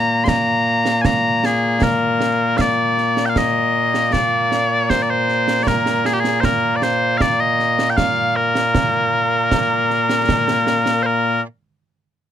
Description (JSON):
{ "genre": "scottish traditional, Scottish pipe music", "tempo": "78 BPM", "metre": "3/4", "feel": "straight", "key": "Bb mixolydian", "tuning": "A4 = 438 Hz", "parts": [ { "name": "mellow small bagpipes", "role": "melody", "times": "0.0-11.4 s", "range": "Bb2 to C6", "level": "-16 LUFS", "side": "left 1 dB", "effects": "none" }, { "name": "concert snare drum and concert bass drum", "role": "drums", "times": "0.3-11.0 s", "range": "none", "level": "-23 LUFS", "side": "right 3 dB", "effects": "none" } ], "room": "little or no reverb", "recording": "close, detailed microphones", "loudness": "-15 LUFS", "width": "side -10 dB against mid", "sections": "0.0-1.8 A section; 1.8-11.1 B section; 11.1-12.3 C section", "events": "none", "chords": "none" }